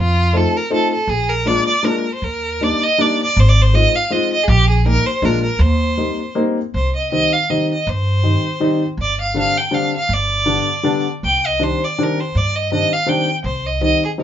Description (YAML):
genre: musette waltz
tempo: 161 BPM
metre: 3/4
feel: swing 54% on 8ths, rubato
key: Eb major, C minor from 6.7 s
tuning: A4 = 440 Hz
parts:
  - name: rich violin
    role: melody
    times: 0.0-14.2 s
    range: F4 to G5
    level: -18 LUFS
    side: right 1 dB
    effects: none
  - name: upright bass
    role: bass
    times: 0.0-13.9 s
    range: G1 to G2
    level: -17 LUFS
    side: equal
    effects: none
  - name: warm upright piano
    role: accompaniment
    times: 0.3-14.2 s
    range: D3 to G4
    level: -19 LUFS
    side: left 2 dB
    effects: none
room: moderate studio ambience, RT60 0.5 s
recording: band playing live in one room, nothing above 7.6 kHz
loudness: -14 LUFS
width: side -10 dB against mid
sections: 0.0-6.7 A section; 6.7-14.2 B section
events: none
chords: 0.0 F7; 1.1 Bb7; 2.2 Ebmaj7; 3.4 Ab6; 4.5 Eb/Bb; 5.2 Bb7; 5.6 Eb6; 6.7 Cm; 9.0 Gsus4; 10.1 G; 11.2 Cmadd9; 13.4 Cm